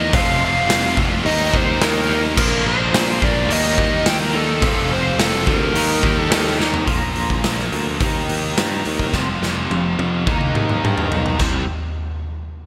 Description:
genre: hard rock.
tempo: 106 BPM.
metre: 4/4.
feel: straight.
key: unclear.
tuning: A4 = 440 Hz.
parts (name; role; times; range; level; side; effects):
dark smooth lead guitar; melody; 0.0-6.6 s; A4 to G5; -24 LUFS; equal; overdrive.
distorted electric guitar; riff; 0.0-6.9 s; Bb2 to G4; -27 LUFS; equal; overdrive.
overdriven semi-hollow guitar; riff; 0.0-11.6 s; F2 to Eb4; -28 LUFS; equal; ensemble chorus.
scooped high-gain guitar; riff; 0.0-11.6 s; F2 to Eb4; -27 LUFS; equal; distortion.
modern bright picked electric bass; bass; 0.0-11.7 s; F1 to G2; -26 LUFS; equal; none.
raw garage drum kit; drums; 0.1-11.5 s; crash cymbal, hi-hat, kick drum, snare drum, splash cymbal, toms; -23 LUFS; equal; gated reverb.
room: moderate lush hall reverb, RT60 2.5 s.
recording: bright 1980s-style digital production.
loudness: -18 LUFS.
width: mono.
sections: 0.0-6.9 A section; 6.9-11.4 B section; 11.4-12.7 C section.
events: drum fill 6.6, 9.1-11.4.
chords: 0.1 F; 1.3 Eb; 2.4 Bb; 3.5 Eb; 4.6 F; 5.8 Eb; 6.9 Bb; 8.0 Eb; 9.1 F5; 10.3 Eb; 11.4 C5.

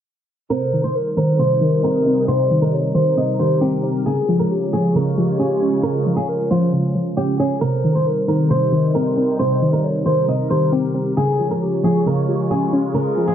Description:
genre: hip hop.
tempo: 135 BPM.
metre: 4/4.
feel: half-time.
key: C phrygian.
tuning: A4 = 440 Hz.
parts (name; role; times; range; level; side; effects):
flamenco guitar; melody; 0.5-13.3 s; F4 to Eb5; -23 LUFS; equal; tape echo.
hollow clarinet-like synth lead; second line; 0.5-13.3 s; G4 to Db5; -23 LUFS; left 1 dB; chorus, tape echo.
warbly dusty pluck; accompaniment; 0.5-13.3 s; C3 to Db4; -19 LUFS; equal; chorus.
sweeping resonant pad; sustained chords; 0.5-13.3 s; C3 to Db5; -24 LUFS; right 1 dB; chorus.
room: moderate recital hall reverb, RT60 1.5 s, digital ambience.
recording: low-pass filter.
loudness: -16 LUFS.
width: side -9 dB against mid.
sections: 0.5-13.3 A section.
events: filter sweep 0.5-13.3.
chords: 0.5 Cm; 4.1 Db; 7.6 Cm; 11.2 Db.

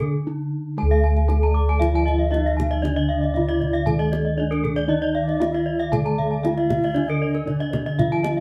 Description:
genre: Balinese gamelan.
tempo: 116 BPM.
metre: 4/4.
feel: straight.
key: D pelog.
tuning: A4 = 439 Hz.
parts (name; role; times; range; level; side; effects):
gamelan-type bronze metallophone; melody; 0.0-8.4 s; D4 to A4-45c; -28 LUFS; equal; none.
gamelan-type bronze metallophone; accompaniment; 0.0-8.4 s; D3 to A3-45c; -32 LUFS; equal; none.
gamelan-type bronze metallophone; arpeggios; 0.0-8.4 s; A4-45c to D6; -31 LUFS; equal; none.
gamelan-type bossed gongs; bass; 0.0-8.4 s; D2 to A4-45c; -25 LUFS; equal; none.
kendang; percussion; 0.0-8.4 s; none; -32 LUFS; equal; none.
gamelan-type bronze metallophone; arpeggios; 0.9-8.2 s; Bb4-40c to Bb5-40c; -32 LUFS; equal; none.
xiao; second line; 1.4-8.4 s; G#4+49c to A5-38c; -35 LUFS; equal; none.
room: moderate studio reverb, RT60 0.7 s.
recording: band playing live in one room.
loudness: -22 LUFS.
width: mono.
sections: 0.8-8.4 A section.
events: break 0.0-0.8.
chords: none.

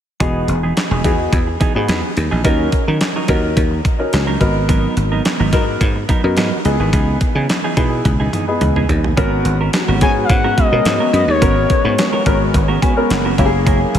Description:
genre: early-eighties boogie funk.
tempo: 107 BPM.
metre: 4/4.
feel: straight.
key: G# minor.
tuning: A4 = 439 Hz.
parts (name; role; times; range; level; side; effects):
warm grand piano; accompaniment; 0.2-14.0 s; A#3 to G#5; -20 LUFS; left 1 dB; wide subtle chorus.
clean electric guitar; riff; 0.2-14.0 s; E3 to B4; -23 LUFS; right 4 dB; lush chorus.
dry thumbed slap bass; bass; 0.2-14.0 s; E1 to D#3; -18 LUFS; equal; none.
clean 12-bit digital drum machine; drums; 0.2-14.0 s; handclaps, hi-hat, kick drum, snare drum, toms; -18 LUFS; equal; overdrive.
soft string machine; sustained chords; 9.7-14.0 s; F#3 to A#4; -23 LUFS; equal; ensemble chorus.
expressive portamento lead; melody; 10.0-12.4 s; C#5 to G#5; -19 LUFS; left 4 dB; chorus, tape echo.
room: moderate huge ambient reverb, RT60 6.7 s.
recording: dreamy mix soaked in reverb.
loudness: -13 LUFS.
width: side -9 dB against mid.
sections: 0.2-9.2 A section; 9.2-14.0 B section.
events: drum fill 8.1-9.2; grand piano fill 12.5-13.7.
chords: 0.2 Emaj7; 2.4 D#m7; 4.4 G#m9; 6.7 C#m9; 9.2 G#m11; 13.4 F#9.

